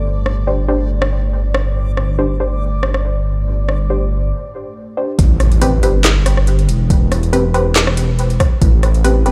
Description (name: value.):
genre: deep dubstep.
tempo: 140 BPM.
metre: 4/4.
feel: swing 53% on 16ths, half-time.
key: A minor.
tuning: A4 = 440 Hz.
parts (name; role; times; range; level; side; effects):
deep dark ambient pad; sustained chords; 0.0-4.3 s; A3 to A4; -35 LUFS; equal; chorus, built-in reverb.
dark detuned saw bass; bass; 0.0-9.3 s; E1 to A1; -17 LUFS; equal; none.
backwards swelling texture; texture; 0.0-4.3 s; D5; -34 LUFS; equal; built-in reverb.
garage drum kit; drums; 0.3-9.3 s; handclaps, hi-hat, rim click, snare drum; -21 LUFS; equal; overdrive, small room ambience.
filtered dub chord stab; stabs; 0.5-9.3 s; C4 to C5; -23 LUFS; equal; chorus, dub echo.
electronic kick drum; drums; 5.2-8.7 s; none; -15 LUFS; equal; overdrive, small room ambience.
impact; sound effects; 5.2-6.9 s; none; -23 LUFS; equal; none.
room: digital ambience.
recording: played on a big sound system in a bare room, large studio reverb.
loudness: -15 LUFS.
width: mono.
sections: 0.0-5.2 A section; 5.2-9.3 B section.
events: break 4.3-5.2; drop 5.2-9.3; impact 5.2-6.9.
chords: 0.0 Gsus4; 5.2 Am7.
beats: | 0.04 0.47 0.90 1.33 | 1.76 2.19 2.62 3.04 | 3.47 3.90 4.33 4.76 | 5.19 5.62 6.04 6.47 | 6.90 7.33 7.76 8.19 | 8.62 9.04.